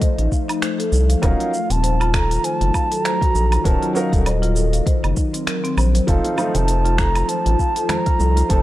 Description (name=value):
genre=organic downtempo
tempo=99 BPM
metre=4/4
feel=swing 56% on 16ths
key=unclear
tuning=A4 = 440 Hz
part: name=mellow bansuri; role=melody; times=0.0-8.6 s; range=Eb5 to Bb5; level=-24 LUFS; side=right 2 dB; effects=tape echo
part: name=ethereal airy pad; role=sustained chords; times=0.0-8.6 s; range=Eb3 to F5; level=-27 LUFS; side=left 2 dB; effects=ensemble chorus, built-in reverb, sidechain pumping
part: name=marimba with medium mallets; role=arpeggios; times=0.0-8.6 s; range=C4 to F5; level=-26 LUFS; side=left 1 dB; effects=tape echo
part: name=electronic kick drum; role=drums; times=0.0-8.6 s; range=none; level=-19 LUFS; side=equal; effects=none
part: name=organic electronic drum kit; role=drums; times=0.0-8.6 s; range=finger snaps, hi-hat, shaker, woodblock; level=-27 LUFS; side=right 1 dB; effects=none
part: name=round analog bass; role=bass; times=0.2-8.6 s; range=Eb1 to C2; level=-18 LUFS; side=equal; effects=tube saturation
part: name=felt-muted upright piano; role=accompaniment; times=1.2-8.6 s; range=F3 to Bb4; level=-26 LUFS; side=right 2 dB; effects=sidechain pumping, tape echo
part: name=bongos and congas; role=percussion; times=6.2-8.5 s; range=none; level=-30 LUFS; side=right 3 dB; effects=none
room=studio reverb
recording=dry, gritty hardware recording, transformer saturation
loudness=-16 LUFS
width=side -15 dB against mid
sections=0.0-8.6 A section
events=none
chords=0.0 F7; 1.2 Ebm7; 6.1 F7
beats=0.01 0.62 | 1.23 1.83 2.44 3.04 | 3.65 4.26 4.86 5.47 | 6.08 6.68 7.29 7.89 | 8.50